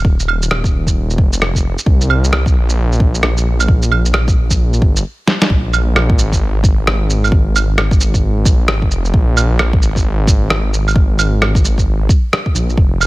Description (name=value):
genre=future garage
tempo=132 BPM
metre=4/4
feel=swing 62% on 16ths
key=unclear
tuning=A4 = 440 Hz
part: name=swelling detuned saw bass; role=bass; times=0.0-13.1 s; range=Eb1 to C2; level=-15 LUFS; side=equal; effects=sidechain pumping
part: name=electronic kick drum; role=drums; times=0.0-12.9 s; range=none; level=-13 LUFS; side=equal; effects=none
part: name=electronic shaker, claves, rim click and snare drum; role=drums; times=0.2-13.1 s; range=none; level=-17 LUFS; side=right 2 dB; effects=none
room=little or no reverb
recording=none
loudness=-11 LUFS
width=side -19 dB against mid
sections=0.0-5.5 A section; 5.5-13.1 B section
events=stop 5.0-5.5; drum fill 5.3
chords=none